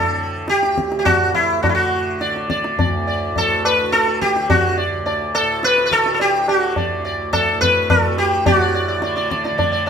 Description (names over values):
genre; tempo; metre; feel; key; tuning
indian classical, Hindustani; 106 BPM; 3/4; straight; D raga khamaj; A4 = 441 Hz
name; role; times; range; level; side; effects
sitar; melody; 0.0-9.9 s; E4 to D5; -16 LUFS; equal; none
tanpura; drone; 0.0-9.9 s; D2 to D3; -26 LUFS; right 2 dB; none
tabla; percussion; 0.5-9.9 s; none; -22 LUFS; left 1 dB; none
room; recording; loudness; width
wet stone room reverb, RT60 1.3 s; band playing live in one room; -15 LUFS; side -7 dB against mid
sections
0.0-8.5 A section; 8.5-9.9 B section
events
none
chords
none